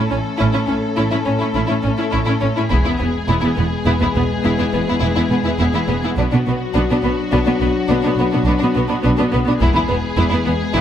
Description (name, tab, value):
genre	cinematic, epic orchestral film score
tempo	69 BPM (dotted quarters)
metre	12/8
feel	straight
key	E mixolydian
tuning	A4 = 441 Hz
part	rich studio violin section	melody	0.0-10.8 s	F#4 to A4	-27 LUFS	left 4 dB	none
part	rich studio violin section	second line	0.0-10.8 s	B3 to E4	-22 LUFS	left 2 dB	none
part	dark French horn section	sustained chords	0.0-10.8 s	F#3 to D4	-23 LUFS	left 4 dB	none
part	rich symphonic cello section	bass	0.0-10.8 s	E2 to B2	-22 LUFS	right 2 dB	none
part	rich studio viola section	accompaniment	0.1-10.8 s	B3 to C#4	-22 LUFS	equal	none
part	rich symphonic double bass section	bass	0.1-10.8 s	E1 to B1	-22 LUFS	right 2 dB	none
part	taiko ensemble	drums	2.7-4.3, 9.6-10.7 s	none	-22 LUFS	equal	none
room	moderate scoring stage reverb, RT60 2.0 s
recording	none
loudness	-15 LUFS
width	side -10 dB against mid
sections	0.0-10.8 A section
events	build-up 0.0-10.8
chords	0.0 A; 2.7 E; 6.2 Bm; 9.6 E